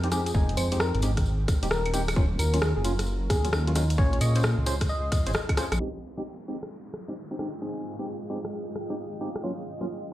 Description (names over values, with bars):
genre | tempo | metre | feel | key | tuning
UK garage, two-step garage | 132 BPM | 4/4 | swing 64% on 16ths | F minor | A4 = 439 Hz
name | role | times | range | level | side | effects
warm analog pad | sustained chords | 0.0-10.1 s | Eb3 to C6 | -42 LUFS | equal | chorus, sidechain pumping
percussive organ stab | stabs | 0.0-9.9 s | Gb3 to Db5 | -33 LUFS | equal | lush chorus, digital delay
dark detuned saw bass | bass | 0.0-5.8 s | Eb1 to Bb2 | -26 LUFS | equal | none
garage drum kit | drums | 0.0-9.9 s | claves, hi-hat, rim click | -31 LUFS | equal | small room ambience
soft struck synth lead | melody | 0.1-5.3 s | Eb4 to Eb5 | -33 LUFS | left 1 dB | chorus, phaser, digital delay
tambourine | percussion | 0.1-5.8 s | none | -39 LUFS | left 1 dB | none
electronic kick drum | drums | 0.3-5.6 s | none | -25 LUFS | equal | small room ambience
downlifter | sound effects | 5.9-9.4 s | none | -46 LUFS | equal | none
granular cloud pad | texture | 7.0-10.1 s | Gb3 to G5 | -37 LUFS | right 1 dB | built-in reverb, sidechain pumping
room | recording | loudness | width
light reverb | played on a big sound system in a bare room, stone room reverb, low-pass filter | -24 LUFS | side -14 dB against mid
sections
0.0-5.8 A section; 5.8-10.1 B section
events
drum fill 5.5-5.8; filter sweep 5.8-10.1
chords
0.0 Fm9; 2.2 Ebm9; 4.0 Bbm9; 5.8 Fm9; 9.4 Ebm9